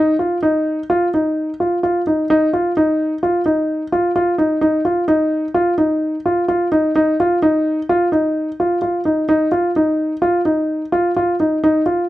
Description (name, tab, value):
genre	progressive instrumental, progressive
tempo	128 BPM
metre	5/4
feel	straight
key	unclear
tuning	A4 = 440 Hz
part	dark grand piano	solo	0.0-12.0 s	Eb4 to F4	-15 LUFS	equal	none
room	light reverb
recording	dry, close 1970s-style studio recording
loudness	-15 LUFS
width	side -15 dB against mid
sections	0.9-12.1 A section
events	none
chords	none